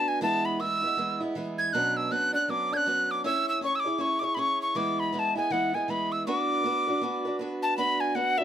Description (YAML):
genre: celtic folk, Celtic hornpipe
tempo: 159 BPM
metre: 4/4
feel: swing 60% on 8ths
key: B dorian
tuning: A4 = 439 Hz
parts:
  - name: tin whistle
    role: melody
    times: 0.0-8.4 s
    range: E5 to G#6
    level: -26 LUFS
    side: equal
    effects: none
  - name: picked old ladder-braced acoustic guitar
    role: accompaniment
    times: 0.0-8.4 s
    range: B2 to C#5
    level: -30 LUFS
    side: right 2 dB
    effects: none
room: light reverb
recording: close, detailed microphones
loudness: -25 LUFS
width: side -10 dB against mid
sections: 0.0-7.8 A section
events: none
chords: 0.2 E; 1.7 Bmadd9; 3.2 C#m; 4.8 E; 6.3 Bm